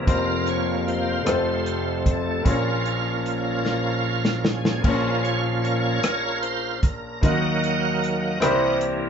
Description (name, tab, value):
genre	slow gospel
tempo	50 BPM (dotted quarters)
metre	6/8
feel	straight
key	Bb minor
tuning	A4 = 440 Hz
part	bright grand piano	accompaniment	0.0-9.1 s	F1 to Eb5	-25 LUFS	left 1 dB	none
part	bright tonewheel organ	sustained chords	0.0-9.1 s	F2 to Gb5	-24 LUFS	right 1 dB	slow rotary speaker, overdrive, chorus vibrato
part	warm soul drum kit	drums	0.1-9.0 s	crash cymbal, hi-hat, kick drum, rim click, snare drum	-23 LUFS	equal	none
room	wet studio ambience, RT60 0.4 s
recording	band playing live in one room, nothing above 7.7 kHz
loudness	-20 LUFS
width	side -7 dB against mid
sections	0.0-4.8 A section; 4.8-9.1 A section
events	tonewheel organ solo 0.0-4.8, 4.8-9.1; drum fill 3.7-4.8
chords	0.1 Fsus4; 1.3 F; 2.5 Bbm; 7.2 Ebm; 8.4 C7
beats	| 0.08 1.27 | 2.46 3.65 | 4.84 6.04 | 7.22 8.41